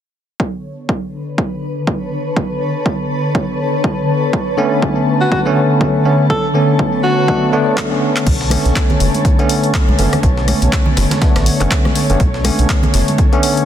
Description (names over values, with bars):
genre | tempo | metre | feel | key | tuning
deep house | 122 BPM | 4/4 | swing 58% on 16ths | B minor | A4 = 440 Hz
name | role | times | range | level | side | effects
warm analog pad | sustained chords | 0.4-13.7 s | D3 to C#5 | -24 LUFS | equal | chorus, sidechain pumping
electronic kick drum | drums | 0.4-13.3 s | none | -17 LUFS | equal | high-pass filter on kick, high-pass filter on room
granular cloud pad | texture | 1.2-13.7 s | D3 to A5 | -20 LUFS | left 1 dB | built-in reverb, sidechain pumping
bell-like tine electric piano | stabs | 4.6-13.7 s | D3 to D4 | -16 LUFS | equal | medium stereo tremolo, sidechain pumping, ping-pong delay
warm alto saxophone | melody | 5.2-7.5 s | F#4 to A4 | -19 LUFS | left 1 dB | dub echo
punchy analog drum machine | drums | 7.8-13.7 s | crash cymbal, handclaps, hi-hat, rim click | -22 LUFS | left 2 dB | overdrive
round analog bass | bass | 8.3-13.0 s | F#1 to B1 | -15 LUFS | equal | sidechain pumping
breakbeat sampler-style drum kit | drums | 8.3-13.6 s | hi-hat, snare drum | -28 LUFS | right 1 dB | sidechain pumping on hats, high-pass filter on hats, high-pass filter on snare, high-pass filter on room
congas | percussion | 8.5-13.2 s | none | -24 LUFS | right 2 dB | none
room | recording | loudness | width
light reverb | dense, heavily limited modern master | -13 LUFS | side -10 dB against mid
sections
0.4-8.3 A section; 8.3-13.7 B section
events
filter sweep on analog synth pad 0.4-8.3; drum fill 7.8-8.3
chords
0.4 Bm9